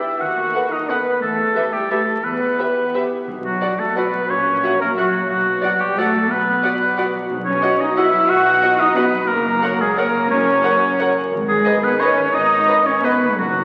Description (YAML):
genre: classical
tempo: 178 BPM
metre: 3/4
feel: uneven beats, rubato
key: unclear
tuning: A4 = 441 Hz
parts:
  - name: clear oboe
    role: second line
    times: 0.0-13.6 s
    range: F#4 to F#5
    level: -21 LUFS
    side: equal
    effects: none
  - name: flute section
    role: second line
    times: 0.0-13.6 s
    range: F#4 to F#5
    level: -27 LUFS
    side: equal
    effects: none
  - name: concert harp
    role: arpeggios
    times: 0.0-13.6 s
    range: F#2 to D5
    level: -30 LUFS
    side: equal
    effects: none
  - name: rich symphonic cello section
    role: bass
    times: 0.0-13.6 s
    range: F#3 to F#4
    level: -25 LUFS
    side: equal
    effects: none
  - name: rich symphonic double bass section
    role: bass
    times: 0.2-13.6 s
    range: F#1 to E2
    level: -35 LUFS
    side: equal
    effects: none
  - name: warm symphonic violin section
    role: melody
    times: 0.5-13.1 s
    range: D#5 to F#5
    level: -33 LUFS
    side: equal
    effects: none
  - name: warm chamber violin section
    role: second line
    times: 0.5-13.1 s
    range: B4 to E5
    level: -33 LUFS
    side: equal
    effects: none
  - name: warm studio viola section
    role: accompaniment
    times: 0.5-13.1 s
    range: F#4 to B4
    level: -32 LUFS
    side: equal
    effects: none
  - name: mellow French horn section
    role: sustained chords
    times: 0.5-13.2 s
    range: F#4 to E5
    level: -29 LUFS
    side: equal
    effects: none
  - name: timpani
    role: percussion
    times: 3.3-3.8, 7.3-7.8, 13.4-13.6 s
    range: F#2 to B2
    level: -37 LUFS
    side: equal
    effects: none
room: wet concert hall reverb, RT60 1.8 s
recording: very old 78 rpm record, vinyl crackle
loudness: -18 LUFS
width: mono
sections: 0.0-13.6 A section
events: none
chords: 0.2 B7/D#; 1.2 Em; 3.3 Bm; 4.3 F#7/A#; 5.3 Bm; 7.3 B; 9.3 F#; 11.3 G#m